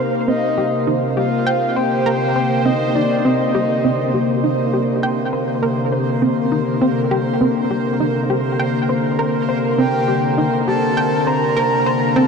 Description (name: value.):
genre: ambient, sequencer-driven space music.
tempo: 101 BPM.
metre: 4/4.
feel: straight.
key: C minor.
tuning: A4 = 439 Hz.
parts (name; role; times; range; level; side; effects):
sweeping resonant pad; sustained chords; 0.0-12.3 s; C3 to F5; -18 LUFS; left 1 dB; chorus, shimmer reverb.
analog pluck; riff; 0.0-12.3 s; C4 to G5; -21 LUFS; right 1 dB; chorus, shimmer reverb, tape echo.
bubbling stepped-filter texture; texture; 0.0-12.3 s; C5; -28 LUFS; right 6 dB; chorus, built-in reverb, shimmer reverb.
breathy flute-like synth lead; melody; 0.3-4.4, 9.8-12.3 s; D5 to Bb5; -22 LUFS; left 1 dB; wide subtle chorus, cassette tape, shimmer reverb, tape echo.
room: wet huge ambient reverb, RT60 8.4 s.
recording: dark, warm production.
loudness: -15 LUFS.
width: side -5 dB against mid.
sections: 0.0-12.3 A section.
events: none.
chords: 0.0 Cm7.